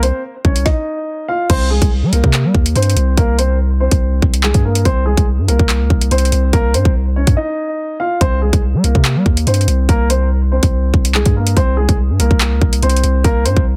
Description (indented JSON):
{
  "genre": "hip hop, drill",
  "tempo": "143 BPM",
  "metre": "4/4",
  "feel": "half-time",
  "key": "C phrygian",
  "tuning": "A4 = 440 Hz",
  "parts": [
    { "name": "dark baby grand piano", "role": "melody", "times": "0.0-13.6 s", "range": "Ab3 to F5", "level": "-22 LUFS", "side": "equal", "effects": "low-pass filter, tape echo" },
    { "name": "long sustained 808-style bass", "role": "bass", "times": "0.0-13.8 s", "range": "C2 to G3", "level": "-17 LUFS", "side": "equal", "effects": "none" },
    { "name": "drill drum kit", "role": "drums", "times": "0.0-13.7 s", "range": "crash cymbal, handclaps, hi-hat, kick drum, snare drum", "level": "-17 LUFS", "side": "equal", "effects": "none" }
  ],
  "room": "little or no reverb",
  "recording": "dense, heavily limited modern master",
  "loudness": "-14 LUFS",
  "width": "mono",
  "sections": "0.0-1.5 A section; 1.5-13.8 B section",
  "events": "stop 0.7-1.5; break 7.4-8.2",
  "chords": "0.0 F5/C; 1.5 C5; 4.9 N.C.; 8.2 C5; 11.6 N.C."
}